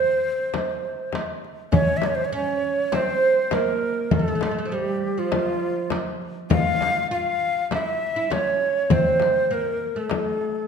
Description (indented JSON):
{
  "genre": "Turkish makam ensemble",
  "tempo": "100 BPM",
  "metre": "4/4",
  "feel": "straight",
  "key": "unclear",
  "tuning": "A4 = 442 Hz",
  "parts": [
    { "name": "breathy bright ney", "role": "melody", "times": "0.0-10.7 s", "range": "F4 to F5", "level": "-23 LUFS", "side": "right 1 dB", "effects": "slapback echo" },
    { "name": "oud", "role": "second line", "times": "0.0-10.7 s", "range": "F3 to F4", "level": "-28 LUFS", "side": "right 4 dB", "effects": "none" },
    { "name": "darbuka", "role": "percussion", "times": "0.1-10.5 s", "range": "none", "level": "-28 LUFS", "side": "right 1 dB", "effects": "none" },
    { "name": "frame drum", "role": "percussion", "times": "0.5-10.2 s", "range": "none", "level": "-27 LUFS", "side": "left 7 dB", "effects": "none" }
  ],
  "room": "wet recital hall reverb, RT60 1.7 s",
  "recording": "dark, warm production",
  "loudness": "-20 LUFS",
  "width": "side -6 dB against mid",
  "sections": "0.0-1.7 A section; 1.7-10.7 B section",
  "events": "none",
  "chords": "none"
}